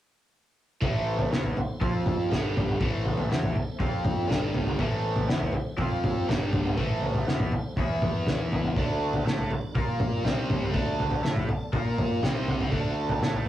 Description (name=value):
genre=psychedelic rock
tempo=121 BPM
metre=4/4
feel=straight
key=A minor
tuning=A4 = 442 Hz
part: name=tonewheel organ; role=sustained chords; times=0.8-13.5 s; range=D4 to Bb5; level=-42 LUFS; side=right 1 dB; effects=slow rotary speaker, chorus vibrato
part: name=raw garage guitar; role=riff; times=0.8-13.5 s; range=G2 to Bb4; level=-30 LUFS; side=equal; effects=overdrive, phaser
part: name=fuzz picked electric bass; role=bass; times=0.8-13.4 s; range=G1 to Bb2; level=-32 LUFS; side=equal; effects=overdrive
part: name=cloth-damped thuddy drum kit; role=drums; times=0.8-13.5 s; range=kick drum, snare drum, toms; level=-27 LUFS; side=equal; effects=none
room=moderate studio reverb, RT60 0.5 s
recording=rough rehearsal-room recording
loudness=-24 LUFS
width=side -13 dB against mid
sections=0.8-13.5 A section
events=none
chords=0.8 Am; 1.8 F5; 2.3 G5; 2.8 Am; 3.8 F5; 4.3 G5; 4.8 Am; 5.8 F5; 6.3 G5; 6.8 Am; 7.8 E5; 8.8 D5; 9.7 Bb5; 10.2 C5; 10.7 D5; 11.7 Bb5; 12.2 C5; 12.7 D5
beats=| 0.82 1.32 1.82 2.31 | 2.81 3.30 3.80 4.29 | 4.79 5.29 5.78 6.28 | 6.77 7.27 7.76 8.26 | 8.76 9.25 9.75 10.24 | 10.74 11.23 11.73 12.22 | 12.72 13.22